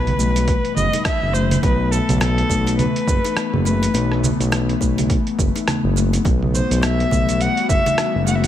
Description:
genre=organic downtempo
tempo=104 BPM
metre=4/4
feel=swing 59% on 16ths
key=unclear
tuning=A4 = 440 Hz
part: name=rich kamancheh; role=melody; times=0.0-8.5 s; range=A4 to F#5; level=-23 LUFS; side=equal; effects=ping-pong delay
part: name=airy breathy pad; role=sustained chords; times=0.0-8.5 s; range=B2 to F#4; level=-26 LUFS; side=left 4 dB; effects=chorus, sidechain pumping
part: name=kalimba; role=arpeggios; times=0.0-8.5 s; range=A3 to F#4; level=-24 LUFS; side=left 7 dB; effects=tape echo
part: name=smooth gliding synth bass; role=bass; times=0.0-8.5 s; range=F#1 to B1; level=-20 LUFS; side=equal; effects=none
part: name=drifting glass-harmonics texture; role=texture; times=0.1-1.7 s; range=B3 to B5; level=-40 LUFS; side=right 6 dB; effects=none
part: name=dusty soul sampler-style drum kit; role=drums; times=0.1-8.5 s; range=cabasa, congas, hi-hat, rim click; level=-24 LUFS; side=right 4 dB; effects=small room ambience
part: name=electronic kick drum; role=drums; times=0.5-7.8 s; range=none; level=-21 LUFS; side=right 1 dB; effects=small room ambience
room=light reverb, digital ambience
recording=none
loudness=-16 LUFS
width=side -11 dB against mid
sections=0.0-1.6 A section; 1.6-8.5 B section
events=band accent 1.1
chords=0.0 Emadd9; 1.6 B7sus4; 6.3 Emadd9

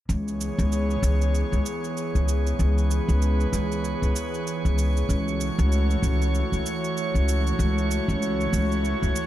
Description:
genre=organic downtempo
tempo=96 BPM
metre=4/4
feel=swing 59% on 16ths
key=C# minor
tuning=A4 = 440 Hz
part: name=airy breathy pad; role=sustained chords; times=0.1-9.3 s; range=E3 to C#5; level=-29 LUFS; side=right 1 dB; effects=chorus
part: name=upright bass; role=bass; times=0.1-9.1 s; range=C#2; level=-22 LUFS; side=equal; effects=none
part: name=shaker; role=drums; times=0.1-9.3 s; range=none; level=-38 LUFS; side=right 6 dB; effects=none
part: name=drifting glass-harmonics texture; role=texture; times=0.4-9.3 s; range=C#5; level=-34 LUFS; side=right 2 dB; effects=chorus, built-in reverb
room=light reverb, digital ambience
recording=dark, warm production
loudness=-22 LUFS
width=side -13 dB against mid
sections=0.1-9.3 A section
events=none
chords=0.1 C#m7; 5.1 A6/C#

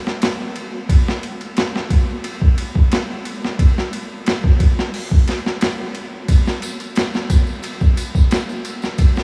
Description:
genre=trip hop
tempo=89 BPM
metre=4/4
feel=straight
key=none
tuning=none
part: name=boom bap sampler-style drum kit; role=drums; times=0.1-9.2 s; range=hi-hat, kick drum, ride cymbal, snare drum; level=-18 LUFS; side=equal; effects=overdrive
part: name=tambourine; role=percussion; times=6.3-9.2 s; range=none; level=-37 LUFS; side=equal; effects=none
room=moderate huge ambient reverb, RT60 8.2 s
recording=dreamy mix soaked in reverb, vinyl crackle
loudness=-18 LUFS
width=mono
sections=0.0-9.2 A section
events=none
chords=none

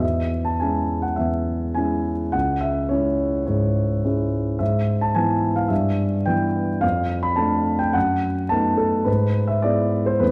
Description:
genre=classical, romantic character piece for solo piano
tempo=106 BPM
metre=4/4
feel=rubato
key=C# minor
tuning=A4 = 443 Hz
part: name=dark concert grand piano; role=solo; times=0.0-10.3 s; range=C#2 to B5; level=-22 LUFS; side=equal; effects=none
room=moderate scoring stage reverb, RT60 1.9 s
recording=vinyl crackle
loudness=-22 LUFS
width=mono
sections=0.0-10.3 A section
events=none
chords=0.0 C#m/E; 2.3 C#m; 4.6 E/G#; 5.7 Em/G; 6.8 Dm/F; 7.9 B7/F#; 9.1 E/G#

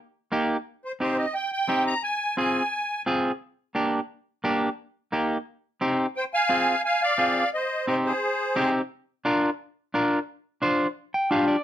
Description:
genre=latin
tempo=175 BPM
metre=4/4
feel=straight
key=C minor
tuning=A4 = 440 Hz
part: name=clean electric guitar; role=accompaniment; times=0.3-11.6 s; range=Bb3 to G5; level=-23 LUFS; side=equal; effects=none
part: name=musette accordion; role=melody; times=0.8-3.0, 6.2-8.7 s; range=Ab4 to Bb5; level=-24 LUFS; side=equal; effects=none
room=light reverb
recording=close, detailed microphones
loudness=-23 LUFS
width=side -11 dB against mid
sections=0.0-6.2 A section; 6.2-11.6 B section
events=clean electric guitar fill 11.0-11.6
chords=0.0 Eb; 0.7 Cm; 2.0 Fm; 3.4 Gm; 4.8 Eb; 5.5 Cm; 6.2 Fm; 7.5 Cm; 8.9 Bb

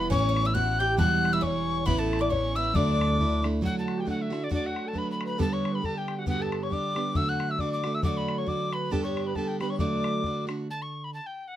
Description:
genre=celtic folk, Celtic polka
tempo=136 BPM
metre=2/4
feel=swing 56% on 8ths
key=D major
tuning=A4 = 440 Hz
part: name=mellow tin whistle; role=melody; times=0.0-11.6 s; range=D5 to G6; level=-31 LUFS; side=left 2 dB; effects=none
part: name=Irish bouzouki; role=second line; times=0.0-3.4 s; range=A3 to G4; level=-34 LUFS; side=right 1 dB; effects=none
part: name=mellow wooden flute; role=second line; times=0.0-10.4 s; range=D4 to A5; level=-35 LUFS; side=left 6 dB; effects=none
part: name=picked plugged-in steel-string acoustic guitar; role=accompaniment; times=0.0-11.2 s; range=E2 to G4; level=-29 LUFS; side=right 3 dB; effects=none
part: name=upright bass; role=bass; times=0.0-3.6 s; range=E1 to D2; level=-30 LUFS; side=equal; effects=none
part: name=bodhran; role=percussion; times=0.1-10.6 s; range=none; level=-32 LUFS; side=left 2 dB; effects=none
room=moderate studio reverb, RT60 0.6 s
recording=none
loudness=-25 LUFS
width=side -12 dB against mid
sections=0.0-3.6 A section; 3.6-10.7 B section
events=none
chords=0.1 Aadd9; 1.0 Em; 1.9 Aadd9; 2.7 Dadd9; 3.6 D; 5.4 G; 7.2 D; 8.9 G; 9.8 D; 10.7 N.C.

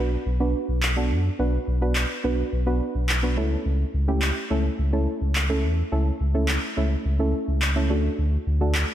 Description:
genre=dance-pop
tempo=106 BPM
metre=4/4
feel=straight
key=unclear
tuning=A4 = 440 Hz
part: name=deep mellow chord stab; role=accompaniment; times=0.0-8.9 s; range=A3 to B4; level=-27 LUFS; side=right 1 dB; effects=chorus, slapback echo
part: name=sub bass with octave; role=bass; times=0.0-8.8 s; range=B1 to F#2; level=-23 LUFS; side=equal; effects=none
part: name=electronic handclaps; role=drums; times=0.8-8.9 s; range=none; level=-28 LUFS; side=equal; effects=overdrive, slapback echo
room=light reverb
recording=none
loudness=-21 LUFS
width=side -11 dB against mid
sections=0.0-8.9 A section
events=none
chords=0.0 Bm; 3.4 A/C#; 7.9 D

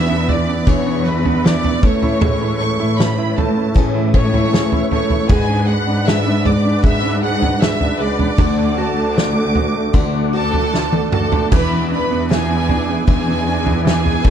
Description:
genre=pop ballad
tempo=78 BPM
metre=4/4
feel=straight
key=unclear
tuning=A4 = 442 Hz
part: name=warm studio violin section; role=melody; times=0.0-14.3 s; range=G#4 to F#6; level=-22 LUFS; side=left 1 dB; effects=none
part: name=bright upright piano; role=accompaniment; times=0.0-14.3 s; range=D3 to G#4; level=-21 LUFS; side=right 8 dB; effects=none
part: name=mellow tonewheel organ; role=sustained chords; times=0.0-14.3 s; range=D4 to D6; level=-27 LUFS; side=equal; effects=chorus vibrato, slow rotary speaker
part: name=picked plugged-in steel-string acoustic guitar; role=arpeggios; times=0.0-14.3 s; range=E2 to B4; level=-25 LUFS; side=left 15 dB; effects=none
part: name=warm symphonic cello section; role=bass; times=0.0-14.3 s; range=C#2 to A2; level=-20 LUFS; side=left 1 dB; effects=none
part: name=loose indie drum kit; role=drums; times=0.3-14.3 s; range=crash cymbal, kick drum, snare drum, toms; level=-17 LUFS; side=equal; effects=none
part: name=warm studio violin section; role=second line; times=2.6-3.9, 8.8-10.1 s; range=A5 to D6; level=-26 LUFS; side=right 1 dB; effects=none
room=little or no reverb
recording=none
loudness=-14 LUFS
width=side -9 dB against mid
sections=0.0-14.3 A section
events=drum fill 10.7-11.5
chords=0.0 E7; 1.8 Amaj7; 5.3 G#m7b5; 8.4 D; 11.5 E7

